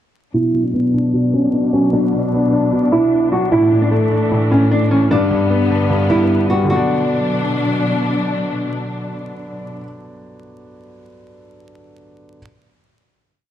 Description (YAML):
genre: hip hop, trap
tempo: 151 BPM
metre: 4/4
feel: half-time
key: B minor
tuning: A4 = 440 Hz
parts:
  - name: nylon-string guitar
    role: melody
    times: 0.3-7.8 s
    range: C#4 to F#4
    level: -17 LUFS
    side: equal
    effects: low-pass filter
  - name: dark concert grand piano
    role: accompaniment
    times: 0.3-12.4 s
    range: G2 to D4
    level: -19 LUFS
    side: equal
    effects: low-pass filter
  - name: muted studio string section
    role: sustained chords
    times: 0.3-9.8 s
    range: G2 to D4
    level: -21 LUFS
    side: left 1 dB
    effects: low-pass filter
room: wet recital hall reverb, RT60 1.8 s, small room reverb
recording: dark, warm production, vinyl crackle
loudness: -14 LUFS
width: side -11 dB against mid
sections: 0.3-6.7 breakdown; 6.7-9.9 final chord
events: filter sweep 0.3-6.7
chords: 0.3 Bm; 3.5 Asus4; 5.1 G; 6.7 Bm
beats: | 0.34 0.74 1.14 1.53 | 1.93 2.33 2.72 3.12 | 3.52 3.92 4.31 4.71 | 5.11 5.50 5.90 6.30 | 6.70 7.09 7.49 7.89 | 8.29 8.68 9.08 9.48